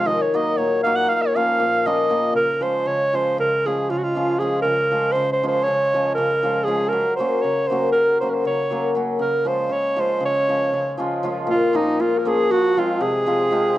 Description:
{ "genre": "balkan folk", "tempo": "237 BPM (eighths)", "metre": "9/8", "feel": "straight", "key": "Db major", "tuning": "A4 = 439 Hz", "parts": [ { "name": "mellow alto saxophone", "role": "melody", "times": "0.0-13.8 s", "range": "Eb4 to Gb5", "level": "-19 LUFS", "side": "right 1 dB", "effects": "slapback echo" }, { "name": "hammered dulcimer", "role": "accompaniment", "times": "0.0-13.8 s", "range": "Bb2 to Gb4", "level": "-22 LUFS", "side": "left 2 dB", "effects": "none" } ], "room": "light reverb", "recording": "dry, close 1970s-style studio recording", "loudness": "-18 LUFS", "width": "side -15 dB against mid", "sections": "0.0-2.4 A section; 2.4-11.5 B section; 11.5-13.8 C section", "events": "alto saxophone solo 0.0-2.4", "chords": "0.1 Ebm; 1.1 Bbm; 2.4 Db; 6.9 Gb; 9.2 Db; 11.5 Bbm; 12.5 Fm", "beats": "| 0.08 0.33 0.58 0.84 1.09 1.34 1.59 1.85 2.10 | 2.35 2.61 2.86 3.11 3.37 3.62 3.87 4.13 4.38 | 4.63 4.89 5.14 5.39 5.65 5.90 6.15 6.41 6.66 | 6.91 7.17 7.42 7.67 7.93 8.18 8.43 8.69 8.94 | 9.19 9.45 9.70 9.95 10.21 10.46 10.71 10.96 11.22 | 11.47 11.72 11.98 12.23 12.48 12.74 12.99 13.24 13.50 | 13.75" }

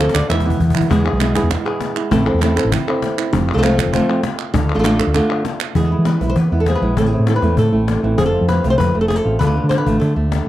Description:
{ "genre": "flamenco", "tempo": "198 BPM", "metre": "4/4", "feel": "straight", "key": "E phrygian dominant", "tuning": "A4 = 440 Hz", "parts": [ { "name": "flamenco guitar", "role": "melody", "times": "0.0-10.5 s", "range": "A2 to E5", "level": "-18 LUFS", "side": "equal", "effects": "none" }, { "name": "flamenco guitar", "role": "stabs", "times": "0.0-10.0 s", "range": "B2 to F4", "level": "-25 LUFS", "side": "right 5 dB", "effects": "none" }, { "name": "woody fretless electric bass", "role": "bass", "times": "0.0-10.4 s", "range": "F1 to E3", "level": "-17 LUFS", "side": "equal", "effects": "none" }, { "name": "palmas hand claps", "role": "percussion", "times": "0.0-5.8 s", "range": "none", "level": "-25 LUFS", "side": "right 3 dB", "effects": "none" }, { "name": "cajon", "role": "percussion", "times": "0.1-10.5 s", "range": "none", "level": "-24 LUFS", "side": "left 6 dB", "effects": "none" } ], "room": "small room ambience", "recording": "dry, close 1970s-style studio recording", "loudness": "-14 LUFS", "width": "side -14 dB against mid", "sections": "0.9-5.8 A section; 5.8-10.5 B section", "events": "drum fill 0.0-0.9", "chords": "0.3 E; 2.1 Am; 3.3 F; 4.5 Dm; 5.8 E; 7.0 Am; 8.2 F; 9.4 Dm", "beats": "0.30 0.60 | 0.90 1.20 1.51 1.81 | 2.11 2.42 2.72 3.02 | 3.33 3.63 3.93 4.24 | 4.54 4.84 5.15 5.45 | 5.75 6.06 6.36 6.67 | 6.97 7.27 7.58 7.88 | 8.19 8.49 8.79 9.10 | 9.40 9.71 10.01 10.32" }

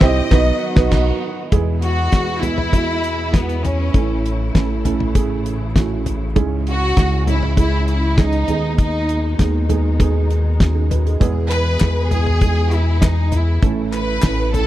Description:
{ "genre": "piano-driven pop", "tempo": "99 BPM", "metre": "4/4", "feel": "straight", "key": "E major", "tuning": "A4 = 440 Hz", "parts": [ { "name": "warm symphonic violin section", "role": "melody", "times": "0.0-14.7 s", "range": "B3 to D#5", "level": "-22 LUFS", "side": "equal", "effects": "tape echo" }, { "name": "felt-muted upright piano", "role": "accompaniment", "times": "0.0-14.7 s", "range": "G2 to E5", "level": "-23 LUFS", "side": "right 8 dB", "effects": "none" }, { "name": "warm studio string section", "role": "sustained chords", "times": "0.0-14.7 s", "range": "B2 to G#4", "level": "-30 LUFS", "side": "left 3 dB", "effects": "none" }, { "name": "chorused synth bass", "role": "bass", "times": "0.0-14.7 s", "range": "A1 to E2", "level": "-19 LUFS", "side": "left 1 dB", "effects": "none" }, { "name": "damped 70s drum kit", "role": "drums", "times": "0.0-14.7 s", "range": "crash cymbal, hi-hat, kick drum, snare drum, toms", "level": "-16 LUFS", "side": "left 1 dB", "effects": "none" }, { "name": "group handclap", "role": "percussion", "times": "11.5-14.4 s", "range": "none", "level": "-30 LUFS", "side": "left 4 dB", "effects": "none" } ], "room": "little or no reverb", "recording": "dry, close 1970s-style studio recording", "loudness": "-15 LUFS", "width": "side -14 dB against mid", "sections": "0.0-1.5 A section; 1.5-14.7 B section", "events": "band accent 0.0-1.5", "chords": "0.3 B; 1.5 E; 3.9 A; 6.4 C#m; 8.5 G#m/D#; 11.2 E; 13.6 A", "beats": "0.31 0.92 | 1.52 2.13 2.73 3.34 | 3.94 4.55 5.16 5.76 | 6.37 6.97 7.58 8.18 | 8.79 9.39 10.00 10.60 | 11.21 11.81 12.42 13.02 | 13.63 14.23" }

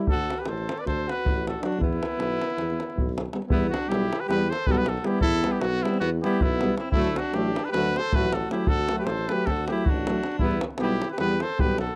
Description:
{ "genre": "balkan folk, Balkan brass band", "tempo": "313 BPM (eighths)", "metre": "9/8", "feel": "straight", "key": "E minor", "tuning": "A4 = 443 Hz", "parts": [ { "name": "brilliant trombone", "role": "accompaniment", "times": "0.0-11.7 s", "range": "A3 to D4", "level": "-35 LUFS", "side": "equal", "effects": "none" }, { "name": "dark euphonium", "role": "accompaniment", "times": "0.0-11.7 s", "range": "F#3 to G3", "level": "-33 LUFS", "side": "equal", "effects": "none" }, { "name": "warm trumpet", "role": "melody", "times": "0.1-12.0 s", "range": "E4 to D5", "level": "-32 LUFS", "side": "equal", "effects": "none" }, { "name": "bright alto saxophone", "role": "second line", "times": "0.1-12.0 s", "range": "A3 to B4", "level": "-34 LUFS", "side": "equal", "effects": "none" }, { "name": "warm tuba", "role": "bass", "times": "0.1-11.9 s", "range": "A1 to E2", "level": "-32 LUFS", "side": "equal", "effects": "none" }, { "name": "davul", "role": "percussion", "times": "0.1-11.9 s", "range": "none", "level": "-31 LUFS", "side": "equal", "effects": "none" } ], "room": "small room ambience", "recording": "dry, close 1970s-style studio recording", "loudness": "-25 LUFS", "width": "mono", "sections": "0.0-3.5 A section; 3.5-12.0 B section", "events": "none", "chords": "0.1 D; 1.8 E5; 3.5 Em; 6.9 D; 10.4 Em", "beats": "| 0.07 0.26 0.45 0.64 0.83 1.02 1.21 1.40 1.59 | 1.78 1.98 2.17 2.36 2.55 2.74 2.93 3.12 3.31 | 3.50 3.69 3.88 4.07 4.26 4.45 4.64 4.84 5.03 | 5.22 5.41 5.60 5.79 5.98 6.17 6.37 6.56 6.75 | 6.94 7.13 7.33 7.52 7.71 7.90 8.09 8.29 8.48 | 8.67 8.86 9.05 9.25 9.44 9.63 9.82 10.02 10.21 | 10.40 10.59 10.78 10.97 11.17 11.36 11.55 11.74 11.93" }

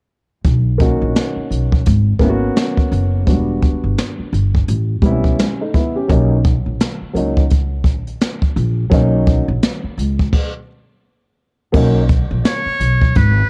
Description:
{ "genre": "hip hop, jazz-hop", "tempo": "85 BPM", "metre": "4/4", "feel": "swing 61% on 16ths", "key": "B major", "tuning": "A4 = 438 Hz", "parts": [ { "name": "upright bass", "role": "bass", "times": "0.4-13.4 s", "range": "E1 to C#2", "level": "-19 LUFS", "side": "equal", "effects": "none" }, { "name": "jazz brush drum kit", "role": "drums", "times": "0.4-13.4 s", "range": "crash cymbal, hi-hat, kick drum, snare drum", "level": "-19 LUFS", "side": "equal", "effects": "cassette tape" }, { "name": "dark baby grand piano", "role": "accompaniment", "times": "0.8-12.0 s", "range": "F#3 to G4", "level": "-21 LUFS", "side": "equal", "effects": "cassette tape" }, { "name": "trumpet with metal mute", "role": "melody", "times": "12.5-13.5 s", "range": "B4 to C#5", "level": "-21 LUFS", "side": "equal", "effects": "cassette tape" } ], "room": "small room reverb", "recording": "home recording on cassette", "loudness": "-16 LUFS", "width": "mono", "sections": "0.4-11.7 A section; 11.7-13.5 B section", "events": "stop 10.3-11.7", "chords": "0.4 Bmaj9; 1.9 G#m11; 3.3 Em7; 4.7 A9; 6.1 Bmaj9", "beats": "| 0.45 1.15 1.86 2.56 | 3.27 3.98 4.68 5.39 | 6.09 6.80 7.50 8.21 | 8.92 9.62 10.33 11.03 | 11.74 12.45 13.15" }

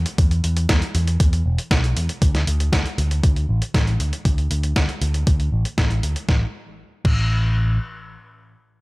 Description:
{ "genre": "italo disco", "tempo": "118 BPM", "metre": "4/4", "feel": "straight", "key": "unclear", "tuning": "A4 = 440 Hz", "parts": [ { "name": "picked electric bass with an envelope filter", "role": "bass", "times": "0.0-7.8 s", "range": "E1 to E2", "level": "-20 LUFS", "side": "equal", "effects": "none" }, { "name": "dusty soul sampler-style drum kit", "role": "drums", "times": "0.1-7.2 s", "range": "crash cymbal, hi-hat, snare drum", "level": "-26 LUFS", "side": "equal", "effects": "none" }, { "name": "electronic kick drum", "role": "drums", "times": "0.2-7.2 s", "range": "none", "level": "-18 LUFS", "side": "equal", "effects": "overdrive" } ], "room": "little or no reverb", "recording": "dry, gritty hardware recording", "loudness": "-18 LUFS", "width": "side -24 dB against mid", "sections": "0.0-6.3 A section; 6.3-8.8 B section", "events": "none", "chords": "none", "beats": "| 0.18 0.69 1.20 1.71 | 2.22 2.73 3.23 3.74 | 4.25 4.76 5.27 5.78 | 6.29 6.79 7.30" }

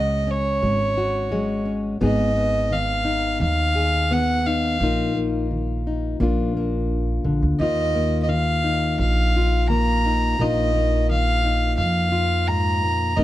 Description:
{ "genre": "acoustic folk duo or small band", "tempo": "86 BPM", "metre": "4/4", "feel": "straight", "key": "unclear", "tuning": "A4 = 439 Hz", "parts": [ { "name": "warm fiddle", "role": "melody", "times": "0.0-13.2 s", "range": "Db5 to Bb5", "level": "-23 LUFS", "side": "right 1 dB", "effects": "none" }, { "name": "fingerpicked plugged-in steel-string acoustic guitar", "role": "accompaniment", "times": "0.0-13.2 s", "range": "Eb2 to Ab4", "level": "-24 LUFS", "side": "left 3 dB", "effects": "none" }, { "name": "upright bass", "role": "bass", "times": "0.0-13.2 s", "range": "Ab1 to F2", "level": "-23 LUFS", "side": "right 1 dB", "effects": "none" } ], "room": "studio reverb", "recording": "dry, close 1970s-style studio recording", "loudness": "-19 LUFS", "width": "side -14 dB against mid", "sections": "0.0-13.2 A section", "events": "none", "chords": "0.0 Dbsus4; 2.0 Abm; 4.8 Bbsus4; 6.2 Bb; 7.6 Ebsus2; 10.4 Bbsus4", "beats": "0.63 1.32 | 2.02 2.72 3.42 4.12 | 4.81 5.51 6.21 6.91 | 7.60 8.30 8.99 9.69 | 10.39 11.08 11.78 12.48 | 13.17" }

